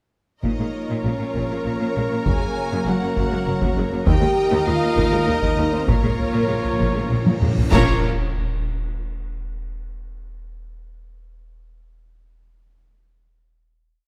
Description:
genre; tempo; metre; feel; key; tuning
cinematic, epic orchestral film score; 98 BPM; 3/4; straight; Bb minor; A4 = 438 Hz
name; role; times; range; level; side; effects
warm symphonic violin section; melody; 0.4-8.1 s; Bb4 to Bb5; -34 LUFS; equal; none
clear symphonic violin section; second line; 0.4-8.1 s; Bb4 to Bb5; -33 LUFS; equal; none
rich studio viola section; accompaniment; 0.4-8.1 s; Ab3 to Bb4; -33 LUFS; equal; none
clear symphonic string section; sustained chords; 0.4-8.1 s; Bb3 to Eb5; -34 LUFS; equal; none
dark trombone section; sustained chords; 0.4-8.0 s; Db3 to Bb3; -33 LUFS; equal; none
mellow French horn section; sustained chords; 0.4-8.0 s; Bb3 to Ab4; -29 LUFS; equal; none
clear trumpet; stabs; 0.4-8.0 s; Bb4 to Db5; -31 LUFS; equal; none
clear symphonic cello section; bass; 0.4-8.1 s; Eb2 to Bb2; -29 LUFS; equal; none
rich studio double bass section; bass; 0.4-8.1 s; Gb1 to Eb2; -29 LUFS; equal; none
solo taiko drums; drums; 0.4-8.9 s; none; -25 LUFS; equal; none
cymbal swell, clash cymbals and concert bass drum; percussion; 4.1-8.9 s; none; -31 LUFS; equal; none
timpani; percussion; 5.9-8.0 s; Bb2; -29 LUFS; equal; none
reverse cymbal and impact; sound effects; 7.3-9.6 s; none; -38 LUFS; equal; none
room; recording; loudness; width
light reverb; close, detailed microphones; -21 LUFS; mono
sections
0.4-7.7 theme; 7.7-9.6 final chord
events
timpani fill 5.9-7.7; reverse cymbal 7.3-7.7; drum fill 7.3-7.7; band accent 7.7-8.3; impact 7.7-9.6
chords
0.4 Bbm; 2.3 Gb; 4.1 Eb; 5.9 Bbm

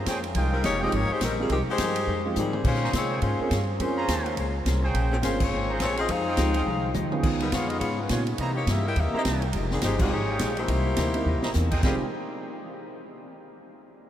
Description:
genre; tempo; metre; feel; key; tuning
jazz, big band swing; 209 BPM; 4/4; swing 60% on 8ths; F minor; A4 = 440 Hz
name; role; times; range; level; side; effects
warm trumpet section; stabs; 0.0-12.0 s; Db4 to Bb5; -35 LUFS; right 2 dB; none
upright bass; bass; 0.0-12.0 s; F1 to C3; -28 LUFS; equal; none
hollow-body jazz guitar; accompaniment; 0.1-12.0 s; C3 to C5; -34 LUFS; left 3 dB; none
swinging big-band drum kit; drums; 0.1-11.9 s; crash cymbal, hi-hat, kick drum, ride cymbal, snare drum, toms; -31 LUFS; right 1 dB; none
warm saxophone section; melody; 0.5-12.0 s; Eb3 to G5; -28 LUFS; left 2 dB; none
warm concert grand piano; accompaniment; 0.8-12.0 s; Ab3 to Bb4; -34 LUFS; right 3 dB; none
room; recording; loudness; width
wet cathedral reverb, RT60 6.6 s; in a vast, echoing space; -23 LUFS; side -11 dB against mid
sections
0.0-11.8 A section; 11.8-13.0 B section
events
drum fill 2.4, 6.7-7.2, 11.3; band accent 5.4, 10.0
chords
0.4 Fm9; 2.6 Bbm9; 6.1 Fm9; 7.2 Db7; 8.4 C7#9; 9.5 Fm9; 10.7 C7#9; 11.8 Fm9

